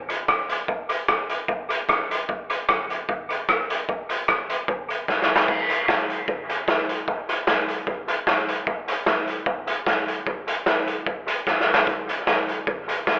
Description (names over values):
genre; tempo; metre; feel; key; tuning
ska; 150 BPM; 4/4; swing 53% on 8ths; none; none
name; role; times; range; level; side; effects
raw garage drum kit; drums; 0.1-13.2 s; crash cymbal, hi-hat, kick drum, rim click, snare drum; -24 LUFS; equal; dub echo
room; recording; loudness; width
light reverb; telephone sound; -24 LUFS; mono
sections
0.0-13.2 A section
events
drum fill 5.1-5.5, 11.5-11.9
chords
none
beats
0.29 | 0.69 1.09 1.49 1.89 | 2.29 2.69 3.09 3.49 | 3.89 4.29 4.69 5.08 | 5.48 5.88 6.28 6.68 | 7.08 7.48 7.88 8.28 | 8.68 9.08 9.48 9.88 | 10.28 10.68 11.07 11.47 | 11.87 12.27 12.67 13.07